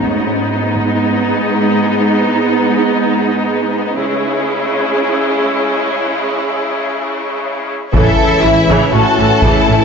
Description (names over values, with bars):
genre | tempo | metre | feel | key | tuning
cinematic, hybrid orchestral and electronic film score | 121 BPM | 4/4 | straight | G# phrygian | A4 = 440 Hz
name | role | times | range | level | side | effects
rich symphonic viola section | accompaniment | 0.0-9.8 s | C#3 to E4 | -17 LUFS | right 1 dB | none
ethereal airy pad | sustained chords | 0.0-9.8 s | E3 to C#5 | -19 LUFS | equal | ensemble chorus, built-in reverb
rich symphonic cello section | bass | 0.0-9.8 s | G#2 to A4 | -18 LUFS | right 1 dB | none
taiko ensemble | drums | 0.0-1.0, 4.0-4.9, 7.9-9.8 s | none | -18 LUFS | left 1 dB | none
warm symphonic violin section | melody | 7.9-9.8 s | E5 to A5 | -17 LUFS | left 5 dB | none
rich symphonic violin section | second line | 7.9-9.8 s | E4 to A4 | -18 LUFS | left 3 dB | none
bright trombone section | sustained chords | 7.9-9.8 s | E3 to C#4 | -20 LUFS | right 1 dB | none
rich symphonic double bass section | bass | 7.9-9.8 s | A1 | -16 LUFS | right 2 dB | none
dark French horn section | sustained chords | 8.0-9.8 s | E3 to A3 | -19 LUFS | left 2 dB | none
room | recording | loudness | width
moderate scoring stage reverb, RT60 1.7 s | high-pass filter, nothing above 7.6 kHz | -12 LUFS | side -6 dB against mid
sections
0.0-7.9 A section; 7.9-9.8 B section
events
build-up 0.0-7.9; filter sweep 0.0-7.9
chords
0.0 G#m; 4.0 C#m; 7.9 A